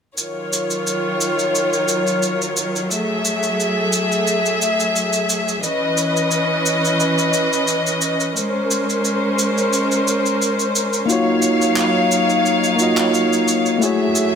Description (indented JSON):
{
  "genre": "sunset chillout",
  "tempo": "88 BPM",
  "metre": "4/4",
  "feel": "swing 54% on 16ths",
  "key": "Eb dorian",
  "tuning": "A4 = 440 Hz",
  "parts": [
    { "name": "dark chamber string section", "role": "sustained chords", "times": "0.2-14.4 s", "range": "Eb3 to F5", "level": "-18 LUFS", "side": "equal", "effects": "none" },
    { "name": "shaker and handclaps", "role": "drums", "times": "0.2-14.3 s", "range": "none", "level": "-23 LUFS", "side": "right 1 dB", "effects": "none" },
    { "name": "tine electric piano", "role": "accompaniment", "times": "11.1-14.4 s", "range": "A3 to Eb5", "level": "-17 LUFS", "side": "moving between left 3 dB and right 3 dB", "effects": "auto-pan, tape echo" }
  ],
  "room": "moderate lush hall reverb, RT60 2.1 s",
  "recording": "none",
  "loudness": "-16 LUFS",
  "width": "side -7 dB against mid",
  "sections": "0.2-14.4 A section",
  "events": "none",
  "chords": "0.2 Ebm9; 2.9 Gbm9; 5.6 Dbm9; 8.4 Bbm9; 11.1 Ebm9; 13.8 Gbm9",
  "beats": "| 0.18 0.86 1.54 2.23 | 2.91 3.59 4.27 4.95 | 5.64 6.32 7.00 7.68 | 8.36 9.04 9.73 10.41 | 11.09 11.77 12.45 13.14 | 13.82"
}